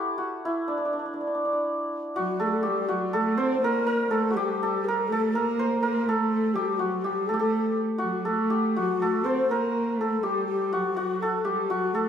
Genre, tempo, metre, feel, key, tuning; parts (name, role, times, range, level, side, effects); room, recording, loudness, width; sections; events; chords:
Persian modal ensemble; 82 BPM (dotted quarters); 6/8; straight; A4 = 440 Hz
santur; melody; 0.0-12.1 s; D4 to C5; -27 LUFS; right 1 dB
breathy mellow ney; second line; 2.2-12.1 s; F#4 to C5; -29 LUFS; left 4 dB
warm cello; second line; 2.2-12.1 s; F#3 to C4; -28 LUFS; right 2 dB
wet large studio reverb, RT60 1.2 s; band playing live in one room; -24 LUFS; side -8 dB against mid
0.0-2.2 A section; 2.2-12.1 B section